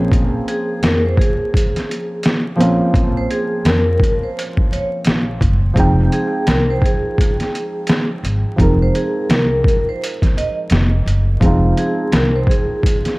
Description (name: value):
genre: lo-fi hip hop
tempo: 85 BPM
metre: 4/4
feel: swing 62% on 16ths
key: F minor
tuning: A4 = 438 Hz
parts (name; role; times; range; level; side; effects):
- felt-muted upright piano; accompaniment; 0.0-13.2 s; F3 to G5; -21 LUFS; right 1 dB; cassette tape, analog delay
- upright bass; bass; 0.0-12.4 s; F1 to F2; -17 LUFS; equal; none
- trip hop sampler-style drum kit; drums; 0.1-13.2 s; hi-hat, kick drum, snare drum; -16 LUFS; equal; overdrive
- vibraphone with medium hard mallets; melody; 0.5-13.2 s; Ab4 to Eb5; -22 LUFS; equal; analog delay
room: studio reverb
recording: echo-heavy mix, vinyl crackle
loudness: -14 LUFS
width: side -23 dB against mid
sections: 0.0-13.2 A section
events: none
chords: 0.0 Bbm9; 5.8 Fm9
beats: | 0.11 0.82 1.53 2.23 | 2.94 3.64 4.35 5.05 | 5.76 6.47 7.17 7.88 | 8.59 9.29 10.00 10.70 | 11.41 12.11 12.82